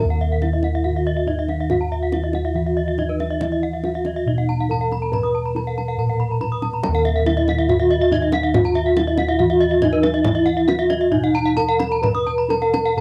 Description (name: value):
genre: Balinese gamelan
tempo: 140 BPM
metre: 4/4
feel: straight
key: Eb pelog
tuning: A4 = 440 Hz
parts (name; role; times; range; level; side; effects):
- gamelan-type bronze metallophone; melody; 0.0-13.0 s; Eb4 to Cb5-40c; -23 LUFS; equal; cassette tape
- gamelan-type bronze metallophone; arpeggios; 0.0-13.0 s; Eb5 to Cb6-40c; -29 LUFS; equal; cassette tape
- gamelan-type bossed gongs; bass; 0.0-13.0 s; Eb2 to Cb5-40c; -25 LUFS; equal; none
- gamelan-type bronze metallophone; arpeggios; 0.1-13.0 s; Cb5-40c to Eb6; -29 LUFS; equal; cassette tape
- kendang; percussion; 0.1-13.0 s; none; -29 LUFS; equal; none
room: moderate booth ambience, RT60 0.2 s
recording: home recording on cassette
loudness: -19 LUFS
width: mono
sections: 0.0-13.0 A section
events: none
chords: none